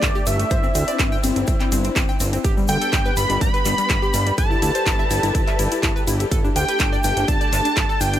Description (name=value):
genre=progressive house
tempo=124 BPM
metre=4/4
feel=straight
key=G major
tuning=A4 = 441 Hz
part: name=wide unison lead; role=melody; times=0.0-8.2 s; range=D5 to B5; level=-23 LUFS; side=right 1 dB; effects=sidechain pumping, ping-pong delay
part: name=warm symphonic string section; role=sustained chords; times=0.0-8.2 s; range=G3 to B4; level=-27 LUFS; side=left 3 dB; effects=sidechain pumping
part: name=analog pluck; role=arpeggios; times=0.0-8.2 s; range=G3 to G5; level=-27 LUFS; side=left 2 dB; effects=chorus, cassette tape, sidechain pumping, ping-pong delay
part: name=fat analog bass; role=bass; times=0.0-8.2 s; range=G1 to D2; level=-24 LUFS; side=equal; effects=sidechain pumping
part: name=deep house drum kit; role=drums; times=0.0-8.2 s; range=handclaps, hi-hat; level=-26 LUFS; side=equal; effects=none
part: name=electronic kick drum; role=drums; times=0.0-7.9 s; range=none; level=-21 LUFS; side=equal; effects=none
part: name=egg shaker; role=percussion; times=0.0-8.2 s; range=none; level=-34 LUFS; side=right 1 dB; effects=none
room=digital ambience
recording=none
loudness=-17 LUFS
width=side -11 dB against mid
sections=0.0-8.2 A section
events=none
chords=0.0 Dsus4/G; 0.5 Cadd9/G; 2.4 G; 4.4 Asus2/G; 6.3 Dsus4/G